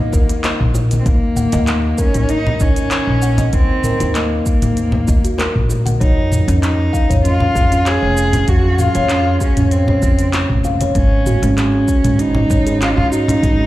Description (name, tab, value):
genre	organic downtempo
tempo	97 BPM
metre	4/4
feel	straight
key	Eb dorian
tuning	A4 = 439 Hz
part	dark cello	melody	0.0-13.7 s	Bb3 to Ab4	-20 LUFS	equal	tape echo
part	upright bass	bass	0.0-13.7 s	F1 to Ab2	-18 LUFS	equal	tube saturation, sidechain pumping
part	kalimba	arpeggios	0.1-13.7 s	Db3 to Gb5	-20 LUFS	right 1 dB	vintage 12-bit sampler grit, tape echo
part	electronic kick drum	drums	0.1-13.6 s	none	-16 LUFS	equal	none
part	organic electronic drum kit	drums	0.1-13.6 s	handclaps, hi-hat, shaker, toms	-22 LUFS	equal	none
part	bongos and congas	percussion	0.1-13.4 s	none	-22 LUFS	left 1 dB	none
room	small room ambience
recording	played on a big sound system in a bare room, large studio reverb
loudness	-13 LUFS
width	side -15 dB against mid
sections	0.0-13.7 A section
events	none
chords	0.0 Eb5; 6.0 Db/F; 11.0 Absus4